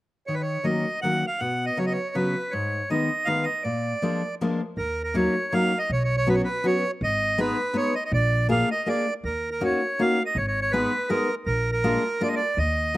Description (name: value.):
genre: musette waltz.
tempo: 161 BPM.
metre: 3/4.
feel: straight.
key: Eb minor.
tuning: A4 = 440 Hz.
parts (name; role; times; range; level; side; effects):
accordion; melody; 0.3-13.0 s; Bb4 to Gb5; -25 LUFS; right 2 dB; slapback echo.
fingerpicked steel-string acoustic guitar; accompaniment; 0.3-13.0 s; Ab2 to Ab4; -25 LUFS; left 1 dB; slapback echo.
upright bass; bass; 4.8-13.0 s; Ab1 to Eb2; -27 LUFS; equal; none.
room: light reverb.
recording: recorded outdoors, with no room sound.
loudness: -22 LUFS.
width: side -17 dB against mid.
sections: 0.3-4.8 A section; 4.8-13.0 B section.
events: none.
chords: 0.3 Ebm7; 1.4 Bsus2; 2.5 Abm; 3.6 Bb7; 4.8 Ebm7; 5.9 Bsus2; 7.0 Abm; 8.1 Bb7; 9.2 Ebm7; 10.4 Abm; 11.5 Bb7.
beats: | 0.28 0.66 1.03 | 1.41 1.78 2.15 | 2.52 2.89 3.26 | 3.64 4.01 4.39 | 4.77 5.15 5.53 | 5.90 6.27 6.64 | 7.01 7.38 7.75 | 8.12 8.49 8.86 | 9.24 9.62 9.99 | 10.36 10.73 11.09 | 11.46 11.83 12.20 | 12.57 12.94.